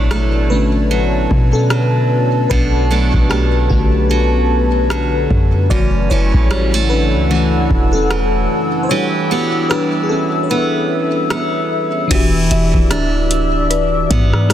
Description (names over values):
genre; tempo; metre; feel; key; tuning
contemporary R&B; 75 BPM; 4/4; swing 58% on 16ths; unclear; A4 = 435 Hz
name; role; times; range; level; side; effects
FM electric piano with soft pad layer; accompaniment; 0.0-14.5 s; C#3 to E5; -19 LUFS; left 2 dB; chorus
deep dark ambient pad; sustained chords; 0.3-14.5 s; A4 to E6; -21 LUFS; left 2 dB; chorus, built-in reverb, sidechain pumping
picked steel-string acoustic guitar; arpeggios; 0.0-14.5 s; F#2 to G4; -20 LUFS; right 4 dB; digital delay
warm 808-style bass; bass; 0.0-14.5 s; D1 to B2; -16 LUFS; equal; none
booming analog drum machine; drums; 0.1-14.5 s; crash cymbal, hi-hat, kick drum, rim click; -18 LUFS; equal; soft clipping on snare
mallet-like synth pluck; texture; 12.5-14.5 s; B4 to E5; -28 LUFS; left 1 dB; chorus, digital delay
room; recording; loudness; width
light reverb, digital ambience; dense, heavily limited modern master; -12 LUFS; side -11 dB against mid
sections
0.0-12.1 A section; 12.1-14.5 B section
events
FM electric piano solo 0.0-12.1; kick muted 8.9-12.1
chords
0.0 Bm7; 5.7 F#m7; 8.9 Em7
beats
0.11 0.91 1.71 | 2.51 3.31 4.11 4.91 | 5.71 6.51 7.31 8.11 | 8.91 9.71 10.51 11.31 | 12.11 12.91 13.71 14.51